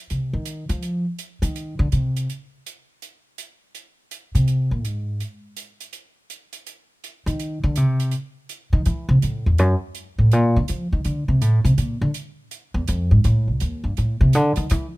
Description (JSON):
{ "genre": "jazz, small-group swing and bop", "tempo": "164 BPM", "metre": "4/4", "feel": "swing 65% on 8ths", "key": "F mixolydian", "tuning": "A4 = 439 Hz", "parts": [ { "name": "upright bass", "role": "bass", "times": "0.1-14.8 s", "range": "C2 to F3", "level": "-18 LUFS", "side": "equal", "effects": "none" }, { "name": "hi-hat", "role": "drums", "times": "0.1-14.8 s", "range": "none", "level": "-36 LUFS", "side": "right 7 dB", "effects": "none" } ], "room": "little or no reverb", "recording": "none", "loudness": "-19 LUFS", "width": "side -20 dB against mid", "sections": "0.0-15.0 A section", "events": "upright bass solo 0.0-15.0", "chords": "none" }